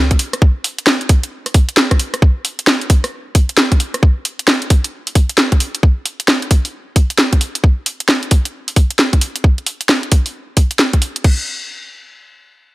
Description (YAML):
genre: UK garage, two-step garage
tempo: 133 BPM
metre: 4/4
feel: swing 63% on 16ths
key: none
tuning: none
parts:
  - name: electronic kick drum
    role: drums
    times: 0.1-11.4 s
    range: none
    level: -11 LUFS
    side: equal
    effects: overdrive
  - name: garage drum kit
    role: drums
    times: 0.1-11.4 s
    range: crash cymbal, hi-hat, rim click, snare drum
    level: -15 LUFS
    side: equal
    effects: overdrive
room: little or no reverb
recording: dry, gritty hardware recording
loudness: -12 LUFS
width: side -20 dB against mid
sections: 0.0-11.2 A section; 11.2-12.7 B section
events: none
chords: none